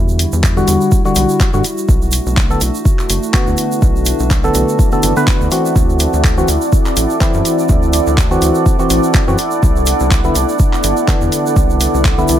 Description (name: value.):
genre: deep house.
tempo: 124 BPM.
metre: 4/4.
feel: swing 56% on 16ths.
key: unclear.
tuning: A4 = 442 Hz.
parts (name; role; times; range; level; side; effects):
hollow soft pad; sustained chords; 0.0-12.4 s; G3 to F#4; -24 LUFS; equal; chorus, sidechain pumping.
percussive organ stab; stabs; 0.0-12.4 s; D3 to B4; -17 LUFS; equal; chorus, cassette tape, sidechain pumping, tape echo.
rubbery square bass; bass; 0.0-12.4 s; F#1 to G2; -17 LUFS; equal; sidechain pumping.
deep dark ambient pad; texture; 0.4-12.4 s; E4 to F#5; -20 LUFS; right 1 dB; chorus, built-in reverb, sidechain pumping.
egg shaker; percussion; 0.1-12.4 s; none; -25 LUFS; right 7 dB; none.
deep house drum kit; drums; 0.2-12.4 s; handclaps, hi-hat; -20 LUFS; left 1 dB; overdrive.
electronic kick drum; drums; 0.4-12.2 s; none; -14 LUFS; equal; overdrive.
room: little or no reverb.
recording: none.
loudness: -11 LUFS.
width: side -11 dB against mid.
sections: 0.0-12.4 A section.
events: none.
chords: 0.0 Em9; 1.9 Bm7; 5.5 D9; 9.4 Cmaj9.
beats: 0.43 0.92 1.40 | 1.89 2.37 2.85 3.34 | 3.82 4.31 4.79 5.27 | 5.76 6.24 6.72 7.21 | 7.69 8.18 8.66 9.14 | 9.63 10.11 10.60 11.08 | 11.56 12.05.